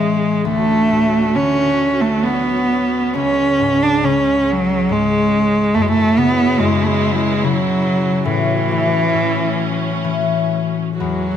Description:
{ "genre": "celtic folk, Celtic slow air", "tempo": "64-72 BPM", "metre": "3/4", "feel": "rubato", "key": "unclear", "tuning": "A4 = 442 Hz", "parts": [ { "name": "rich cello", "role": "melody", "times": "0.0-11.4 s", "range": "E3 to D4", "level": "-15 LUFS", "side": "right 2 dB", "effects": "none" }, { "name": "concert harp", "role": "accompaniment", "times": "0.0-11.4 s", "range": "C#2 to F#3", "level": "-20 LUFS", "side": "left 6 dB", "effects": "none" }, { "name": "clear studio string section", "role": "sustained chords", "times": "0.0-11.4 s", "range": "C#2 to G#4", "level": "-25 LUFS", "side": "right 2 dB", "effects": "none" } ], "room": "light reverb", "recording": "close, detailed microphones", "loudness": "-14 LUFS", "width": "side -9 dB against mid", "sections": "0.0-11.0 A section", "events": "none", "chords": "0.5 Dmaj7; 3.1 C#5; 5.8 F#7sus4; 8.3 A6" }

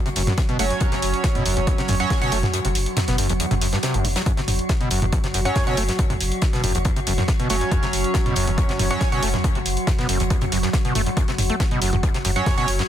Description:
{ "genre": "driving peak-time techno", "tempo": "139 BPM", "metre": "4/4", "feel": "straight", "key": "unclear", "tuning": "A4 = 441 Hz", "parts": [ { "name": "metallic inharmonic drone", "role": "drone", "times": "0.0-12.9 s", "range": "F#3 to F#4", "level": "-28 LUFS", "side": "right 1 dB", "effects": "chorus, built-in reverb, sidechain pumping" }, { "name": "overdriven acid bass", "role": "riff", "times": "0.1-12.8 s", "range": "E2 to A3", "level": "-26 LUFS", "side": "equal", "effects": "distortion, analog chorus, sidechain pumping, ping-pong delay" }, { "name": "saturated sub bass", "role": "bass", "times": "0.1-12.8 s", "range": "F#1", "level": "-26 LUFS", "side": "equal", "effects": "tube saturation, sidechain pumping, low-pass filter" }, { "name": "damped 70s drum kit", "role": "drums", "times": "0.1-12.9 s", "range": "hi-hat, snare drum", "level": "-32 LUFS", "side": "left 3 dB", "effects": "sidechain pumping on hats, high-pass filter on hats, high-pass filter on snare, high-pass filter on room" }, { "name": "punchy analog drum machine", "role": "drums", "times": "0.1-12.9 s", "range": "hi-hat, toms", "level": "-26 LUFS", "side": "right 1 dB", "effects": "overdrive, sidechain pumping on hats, sidechain pumping on toms" }, { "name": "electronic kick drum", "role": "drums", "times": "0.4-12.6 s", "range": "none", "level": "-23 LUFS", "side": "equal", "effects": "none" }, { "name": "sync-sweep polysynth", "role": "stabs", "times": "0.6-2.3, 5.5-9.2, 12.4-12.7 s", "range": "F#3 to C#5", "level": "-25 LUFS", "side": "right 3 dB", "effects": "chorus, sidechain pumping, ping-pong delay" } ], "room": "little or no reverb", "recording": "dense, heavily limited modern master", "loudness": "-18 LUFS", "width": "side -10 dB against mid", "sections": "0.0-12.9 A section", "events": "kick drops out 2.5-4.3", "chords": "0.0 F#5" }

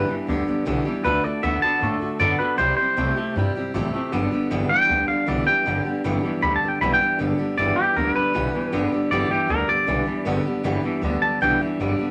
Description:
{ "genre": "rockabilly", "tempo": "156 BPM", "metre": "4/4", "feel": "straight", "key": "G major", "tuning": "A4 = 440 Hz", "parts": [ { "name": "twangy electric guitar", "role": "melody", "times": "0.0-12.1 s", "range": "G4 to B5", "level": "-24 LUFS", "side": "equal", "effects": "none" }, { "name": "picked steel-string acoustic guitar", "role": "accompaniment", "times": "0.0-12.1 s", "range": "G2 to A4", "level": "-29 LUFS", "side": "equal", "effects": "none" }, { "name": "twangy electric guitar", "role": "riff", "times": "0.0-12.1 s", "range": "G2 to B3", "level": "-29 LUFS", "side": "equal", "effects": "tremolo" }, { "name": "upright bass", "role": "bass", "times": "0.0-12.0 s", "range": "G1 to A2", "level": "-31 LUFS", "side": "equal", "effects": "none" } ], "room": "wet club reverb, RT60 0.5 s", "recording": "none", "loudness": "-22 LUFS", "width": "mono", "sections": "0.0-7.2 A section; 7.2-12.1 B section", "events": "clean electric guitar solo 0.0-7.2", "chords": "0.0 G; 1.1 D; 2.6 C; 4.1 G" }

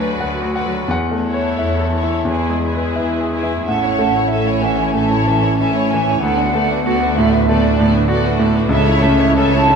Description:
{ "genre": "classical", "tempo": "85-99 BPM", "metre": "4/4", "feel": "rubato", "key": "A major", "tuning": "A4 = 440 Hz", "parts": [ { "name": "bright concert grand piano", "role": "melody", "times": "0.0-9.8 s", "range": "C#2 to G#5", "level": "-18 LUFS", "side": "equal", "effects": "none" }, { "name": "warm symphonic violin section", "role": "melody", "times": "0.0-9.8 s", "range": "B4 to E5", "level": "-28 LUFS", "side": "left 2 dB", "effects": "none" }, { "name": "warm symphonic violin section", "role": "second line", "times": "0.0-9.8 s", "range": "F#4 to C#5", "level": "-25 LUFS", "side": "left 1 dB", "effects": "none" }, { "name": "rich studio viola section", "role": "accompaniment", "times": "0.0-9.8 s", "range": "B3 to F#4", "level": "-25 LUFS", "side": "equal", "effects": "none" }, { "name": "rich symphonic cello section", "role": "bass", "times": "0.0-9.8 s", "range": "C#2 to A2", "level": "-23 LUFS", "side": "right 3 dB", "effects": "none" }, { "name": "mellow French horn section", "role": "sustained chords", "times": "3.6-9.8 s", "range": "A3 to C#4", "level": "-22 LUFS", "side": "left 1 dB", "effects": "none" }, { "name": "hollow large flute ensemble", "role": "second line", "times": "3.7-9.8 s", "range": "D5 to A5", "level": "-19 LUFS", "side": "right 2 dB", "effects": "none" }, { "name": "rich symphonic double bass section", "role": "bass", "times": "3.7-9.8 s", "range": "A1 to D2", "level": "-22 LUFS", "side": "right 2 dB", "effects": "none" } ], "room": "wet scoring stage reverb, RT60 1.7 s", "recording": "none", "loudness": "-14 LUFS", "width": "side -6 dB against mid", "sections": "0.0-3.7 A section; 3.7-9.8 B section", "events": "none", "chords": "0.0 Bm/D; 0.9 A/E; 3.7 A; 6.2 D6; 8.7 A/C#" }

